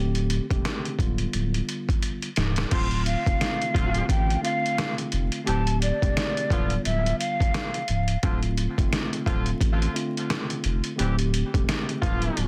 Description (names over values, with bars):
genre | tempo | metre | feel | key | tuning
hip hop, boom-bap hip-hop | 87 BPM | 4/4 | swing 60% on 16ths | D dorian | A4 = 437 Hz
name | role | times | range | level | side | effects
mellow tine electric piano | accompaniment | 0.0-12.5 s | D3 to G4 | -33 LUFS | equal | cassette tape, high-pass filter, low-pass filter
saturated sub bass | bass | 0.0-12.5 s | C#1 to A1 | -28 LUFS | equal | none
trip hop sampler-style drum kit | drums | 0.1-12.5 s | crash cymbal, hi-hat, kick drum, snare drum | -29 LUFS | equal | none
breathy mellow jazz flute | melody | 2.7-8.2 s | D5 to C6 | -31 LUFS | equal | high-pass filter, low-pass filter, tape echo
clear horn section | stabs | 2.7-12.5 s | D3 to G4 | -36 LUFS | equal | high-pass filter, low-pass filter, tape echo
room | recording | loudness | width
little or no reverb | dense, heavily limited modern master, vinyl crackle | -25 LUFS | mono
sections
0.0-2.7 A section; 2.7-12.5 B section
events
drum fill 2.0-2.7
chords
0.0 Am7/D; 1.0 G7/D; 2.7 Dm7; 5.5 Am7/D; 6.5 G7/D; 8.2 Dm7; 11.0 Am7/D